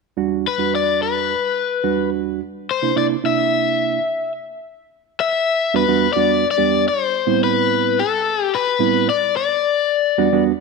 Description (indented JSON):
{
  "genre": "blues",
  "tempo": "108 BPM",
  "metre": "4/4",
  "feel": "straight",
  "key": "E minor",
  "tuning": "A4 = 439 Hz",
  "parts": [
    { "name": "reed electric piano", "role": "accompaniment", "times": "0.2-10.5 s", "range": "E2 to G4", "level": "-20 LUFS", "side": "right 15 dB", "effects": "none" },
    { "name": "overdriven electric guitar", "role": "melody", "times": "0.5-10.4 s", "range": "A4 to E5", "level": "-18 LUFS", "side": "left 8 dB", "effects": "none" }
  ],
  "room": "moderate echo chamber reverb, RT60 1.7 s, digital ambience",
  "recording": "1960s-style stereo with parts hard left and right",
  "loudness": "-16 LUFS",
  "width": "side -3 dB against mid",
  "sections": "0.2-4.6 A section; 4.6-10.6 B section",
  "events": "none",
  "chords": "0.2 Em7; 2.4 C7; 4.6 Em9; 6.9 Am9; 9.1 Em9"
}